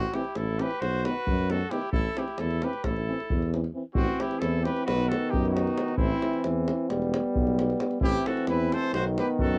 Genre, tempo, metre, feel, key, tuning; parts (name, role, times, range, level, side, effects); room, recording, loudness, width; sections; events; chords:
balkan folk, Balkan brass band; 266 BPM (eighths); 9/8; straight; A dorian sharp4; A4 = 440 Hz
clear trumpet; melody; 0.0-9.6 s; E4 to C5; -34 LUFS; equal
clear trumpet; second line; 0.0-9.6 s; C4 to A4; -40 LUFS; equal
warm tuba; bass; 0.0-9.6 s; E1 to F#2; -31 LUFS; equal
brilliant trombone; accompaniment; 0.1-9.6 s; D#3 to G3; -36 LUFS; equal
mellow euphonium; accompaniment; 0.1-9.6 s; B3 to C4; -33 LUFS; equal
davul; percussion; 0.1-9.6 s; -34 LUFS; equal
little or no reverb; dry, close 1970s-style studio recording; -27 LUFS; mono
0.0-4.0 A section; 4.0-9.6 A section
0.0 Am; 0.8 B; 1.9 Am; 4.9 B; 6.0 Am; 6.9 Em; 8.0 Am; 8.9 B